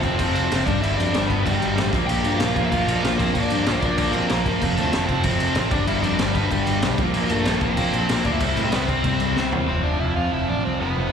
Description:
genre	punk rock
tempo	190 BPM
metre	4/4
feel	straight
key	unclear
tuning	A4 = 441 Hz
part	crunchy overdriven guitar	melody	0.0-11.1 s	G3 to G5	-26 LUFS	left 1 dB	slapback echo, digital delay
part	overdriven electric guitar	riff	0.0-11.1 s	F2 to C4	-26 LUFS	left 17 dB	none
part	tight distorted guitar	riff	0.0-11.1 s	F2 to C4	-26 LUFS	right 13 dB	distortion, slapback echo
part	picked electric bass	bass	0.0-11.1 s	F1 to A2	-25 LUFS	equal	none
part	raw garage drum kit	drums	0.0-9.6 s	crash cymbal, kick drum, snare drum, toms	-24 LUFS	equal	none
room	little or no reverb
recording	live gig heard through the venue's PA, club reverb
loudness	-19 LUFS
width	side -7 dB against mid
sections	0.0-9.7 A section; 9.7-11.1 B section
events	drum fill 9.4-9.7; half time 9.7-11.1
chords	0.0 F5; 0.7 G; 1.9 Bb; 4.6 F; 5.7 G; 7.0 Bb5; 8.4 C; 9.7 F5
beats	0.19 0.51 | 0.83 1.14 1.46 1.77 | 2.09 2.40 2.72 3.04 | 3.35 3.67 3.98 4.30 | 4.62 4.93 5.25 5.57 | 5.88 6.20 6.51 6.83 | 7.15 7.46 7.78 8.10 | 8.41 8.73 9.05 9.37 | 9.69 10.00 10.32 10.64 | 10.96

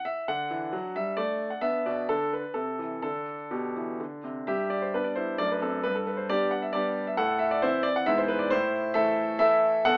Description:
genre	classical-period piano sonatina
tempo	133 BPM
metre	3/4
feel	rubato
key	G major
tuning	A4 = 440 Hz
part	clear grand piano	solo	0.0-10.0 s	E2 to F#5	-28 LUFS	equal	none
room	light reverb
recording	AM radio sound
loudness	-28 LUFS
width	mono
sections	0.0-4.5 A section; 4.5-10.0 B section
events	none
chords	0.3 D; 1.6 Bmadd11; 2.6 Am/C; 3.0 G/D; 4.0 Csus2; 4.5 G; 5.4 D/F#; 5.8 G; 7.2 Am; 8.1 E/G#; 8.5 Am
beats	| 0.28 0.73 1.18 | 1.63 2.09 2.56 | 3.04 3.52 4.00 | 4.48 4.94 5.39 | 5.84 6.29 6.74 | 7.19 7.63 8.08 | 8.53 8.97 9.42 | 9.86

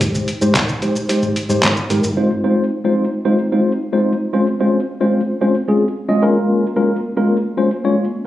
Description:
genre	dance-pop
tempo	111 BPM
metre	4/4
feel	straight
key	unclear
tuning	A4 = 442 Hz
part	mellow tine electric piano	accompaniment	0.0-8.0 s	Ab3 to Eb5	-15 LUFS	left 1 dB	medium stereo tremolo, sidechain pumping
part	vintage muted fingered electric bass	bass	0.0-2.1 s	G1 to Ab2	-21 LUFS	equal	sidechain pumping
part	trip hop sampler-style drum kit	drums	0.0-2.2 s	handclaps, hi-hat, kick drum, shaker, snare drum	-19 LUFS	equal	none
room	light reverb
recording	recorded on a phone in the room, club reverb, compression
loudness	-14 LUFS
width	side -14 dB against mid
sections	0.0-2.2 A section; 2.2-8.3 B section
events	kick muted 1.1-2.2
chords	0.0 Abmaj7; 2.2 Fm7; 4.3 Dbmaj7; 6.2 Bbm7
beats	| 0.01 0.55 1.09 1.63 | 2.17 2.71 3.25 3.79 | 4.33 4.87 5.41 5.95 | 6.50 7.04 7.58

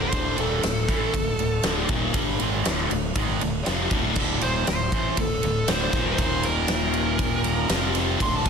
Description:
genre	hard rock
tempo	119 BPM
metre	4/4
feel	straight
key	unclear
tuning	A4 = 440 Hz
part	dark smooth lead guitar	melody	0.0-8.5 s	A4 to C6	-28 LUFS	right 1 dB	overdrive, plate reverb
part	cranked stack guitar	riff	0.0-8.5 s	D2 to A3	-28 LUFS	left 10 dB	overdrive, phaser
part	distorted electric guitar	riff	0.0-8.5 s	D2 to A3	-29 LUFS	right 13 dB	overdrive
part	fuzz fingered electric bass	bass	0.0-8.5 s	D1 to A1	-29 LUFS	equal	overdrive
part	huge arena drum kit	drums	0.1-8.5 s	crash cymbal, kick drum, ride cymbal, snare drum	-26 LUFS	equal	none
room	light reverb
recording	dense, heavily limited modern master, lossy compression artefacts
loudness	-21 LUFS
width	side -6 dB against mid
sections	0.0-8.5 A section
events	lead electric guitar solo 0.0-8.5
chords	0.0 Dm; 6.2 Eb5; 7.7 F5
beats	| 0.14 0.64 1.15 1.65 | 2.16 2.66 3.17 3.67 | 4.17 4.68 5.18 5.69 | 6.20 6.70 7.21 7.71 | 8.21

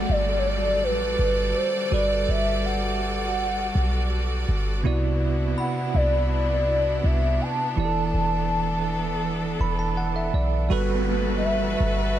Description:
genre	contemporary R&B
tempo	82 BPM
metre	4/4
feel	straight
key	unclear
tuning	A4 = 440 Hz
part	hollow clarinet-like synth lead	melody	0.0-12.2 s	B4 to A5	-26 LUFS	equal	chorus, ping-pong delay
part	bell-like tine electric piano	accompaniment	0.0-12.2 s	C3 to B5	-28 LUFS	right 3 dB	medium stereo tremolo
part	bright studio string section	sustained chords	0.0-12.2 s	C3 to D5	-31 LUFS	equal	none
part	clean 808-style bass	bass	0.0-12.2 s	E1 to C2	-25 LUFS	equal	none
part	downlifter	sound effects	0.0-4.8, 10.7-12.2 s	none	-34 LUFS	left 2 dB	none
part	synth chime	texture	5.6-7.3 s	B5	-38 LUFS	left 2 dB	ensemble chorus, phaser, ping-pong delay
room	digital ambience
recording	none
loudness	-21 LUFS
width	side -11 dB against mid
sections	0.0-10.7 A section; 10.7-12.2 B section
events	tine electric piano fill 9.2-10.7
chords	0.0 Gmaj9; 4.8 Cmaj9#11; 7.8 E7sus4; 10.7 Gmaj9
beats	0.45 1.19 | 1.92 2.65 3.38 4.11 | 4.84 5.58 6.31 7.04 | 7.77 8.50 9.23 9.97 | 10.70 11.43 12.16

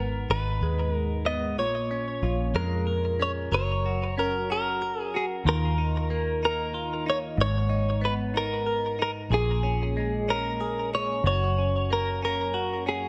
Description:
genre	six-eight pop ballad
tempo	62 BPM (dotted quarters)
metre	6/8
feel	straight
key	F# major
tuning	A4 = 442 Hz
part	direct-recorded clean electric guitar	melody	0.0-13.1 s	G#4 to D#5	-30 LUFS	equal	subtle chorus, delay
part	direct-recorded clean electric guitar	accompaniment	0.0-13.1 s	F#2 to A#4	-34 LUFS	equal	phaser
part	vintage muted fingered electric bass	bass	0.0-13.1 s	F#1 to E#2	-31 LUFS	equal	none
room	moderate echo chamber reverb, RT60 1.7 s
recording	none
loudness	-27 LUFS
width	mono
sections	0.0-3.5 A section; 3.5-13.1 B section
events	none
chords	0.0 G#m; 1.6 A#m7; 3.5 F#; 5.5 D#sus2; 7.4 G#madd9; 9.3 A#m7; 11.2 F#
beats	0.62 | 1.58 2.55 | 3.53 4.50 | 5.46 6.42 | 7.38 8.34 | 9.30 10.27 | 11.24 12.21

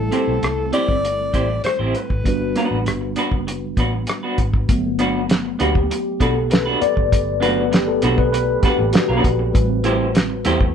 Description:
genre	lush 1970s-style soul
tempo	99 BPM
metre	4/4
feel	straight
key	G major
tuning	A4 = 439 Hz
part	breathy alto saxophone	melody	0.0-3.1 s	A4 to D5	-23 LUFS	left 3 dB	none
part	mellow tine electric piano	accompaniment	0.0-10.7 s	F#3 to D5	-21 LUFS	left 1 dB	medium stereo tremolo
part	vintage muted fingered electric bass	bass	0.0-10.7 s	F#1 to E2	-24 LUFS	equal	none
part	electric guitar through a small old amp	riff	0.1-10.7 s	A3 to C5	-22 LUFS	right 1 dB	tremolo
part	cloth-damped thuddy drum kit	drums	0.1-10.7 s	hi-hat, kick drum, rim click, snare drum	-19 LUFS	equal	none
room	moderate studio ambience, RT60 0.5 s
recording	band playing live in one room, cassette tape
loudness	-16 LUFS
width	side -7 dB against mid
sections	0.0-4.7 A section; 4.7-10.7 B section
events	tine electric piano solo 4.7-10.7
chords	0.0 Am7; 2.3 Gmaj7; 9.5 Am7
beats	0.43 1.04 1.65 | 2.26 2.87 3.48 4.08 | 4.69 5.30 5.91 6.51 | 7.12 7.73 8.33 8.94 | 9.55 10.15

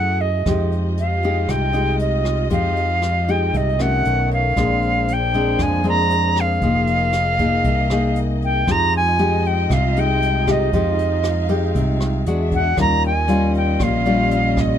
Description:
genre	bossa nova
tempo	117 BPM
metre	4/4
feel	straight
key	F minor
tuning	A4 = 440 Hz
part	silver concert flute	melody	0.0-14.8 s	Eb5 to Bb5	-20 LUFS	equal	none
part	nylon-string guitar	accompaniment	0.0-14.8 s	Bb2 to Ab4	-22 LUFS	left 3 dB	none
part	warm symphonic string section	sustained chords	0.0-14.8 s	G3 to F5	-29 LUFS	equal	none
part	fingered electric bass	bass	0.0-14.8 s	F1 to Gb2	-21 LUFS	right 1 dB	none
part	jazz brush drum kit	drums	0.5-14.7 s	hi-hat, kick drum, rim click	-27 LUFS	equal	none
room	little or no reverb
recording	none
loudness	-16 LUFS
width	side -9 dB against mid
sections	0.0-8.7 A section; 8.7-14.8 B section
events	none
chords	0.5 Fm9; 4.1 B9; 4.6 Bb9; 6.6 Fm7; 8.7 Fm9; 12.3 E9; 12.8 Eb9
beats	| 0.46 0.97 1.49 2.00 | 2.51 3.03 3.54 4.05 | 4.57 5.08 5.60 6.11 | 6.62 7.14 7.65 8.16 | 8.68 9.19 9.70 10.22 | 10.73 11.24 11.75 12.27 | 12.78 13.29 13.80 14.32

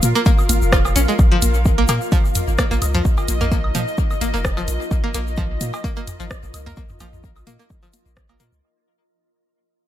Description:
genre	minimal techno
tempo	129 BPM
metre	4/4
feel	swing 54% on 16ths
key	unclear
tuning	A4 = 441 Hz
part	punchy sub bass	bass	0.0-8.6 s	F1 to Bb2	-21 LUFS	equal	sidechain pumping
part	garage drum kit	drums	0.0-8.5 s	hi-hat, rim click	-23 LUFS	equal	studio reverb
part	egg shaker	percussion	0.0-8.6 s	none	-30 LUFS	left 6 dB	none
part	electronic congas, woodblock, cowbell and toms	percussion	0.0-8.4 s	none	-28 LUFS	left 1 dB	studio reverb, tape echo
part	granular cloud pad	texture	0.0-8.7 s	F4 to F5	-27 LUFS	left 1 dB	built-in reverb, sidechain pumping
part	string-like resonator pluck	riff	0.2-8.4 s	F3 to F4	-24 LUFS	equal	chorus, sidechain pumping, ping-pong delay
part	electronic kick drum	drums	0.3-8.3 s	none	-18 LUFS	equal	overdrive, studio reverb
room	little or no reverb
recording	none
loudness	-16 LUFS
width	side -12 dB against mid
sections	0.0-8.6 A section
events	drop 0.0-8.6; fade-out 1.2-8.6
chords	0.0 Bb5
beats	0.26 0.73 | 1.19 1.66 2.12 2.59 | 3.05 3.52 3.98 4.45 | 4.91 5.38 5.84 6.31 | 6.77 7.24 7.70 8.17

